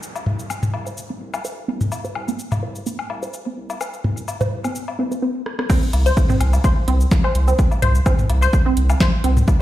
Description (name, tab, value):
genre	minimal techno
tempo	127 BPM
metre	4/4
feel	swing 54% on 16ths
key	unclear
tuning	A4 = 439 Hz
part	booming analog drum machine	drums	0.0-9.6 s	crash cymbal, hi-hat, rim click, shaker, snare drum	-28 LUFS	equal	none
part	downlifter	sound effects	0.0-1.9 s	none	-40 LUFS	right 1 dB	none
part	electronic woodblock and toms	percussion	0.2-9.6 s	none	-25 LUFS	left 2 dB	none
part	resonant blip pluck	riff	0.3-9.3 s	C4 to C5	-24 LUFS	right 1 dB	chorus, phaser, cassette tape, sidechain pumping, digital delay
part	saturated sub bass	bass	0.3-9.4 s	C2	-19 LUFS	equal	sidechain pumping, high-pass filter
part	electronic kick drum	drums	5.7-9.6 s	none	-17 LUFS	equal	none
room	light reverb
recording	played on a big sound system in a bare room, stone room reverb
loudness	-17 LUFS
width	side -14 dB against mid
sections	0.0-5.7 A section; 5.7-9.6 B section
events	drum fill 5.5; drop 5.7-9.6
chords	0.0 N.C.; 5.7 C5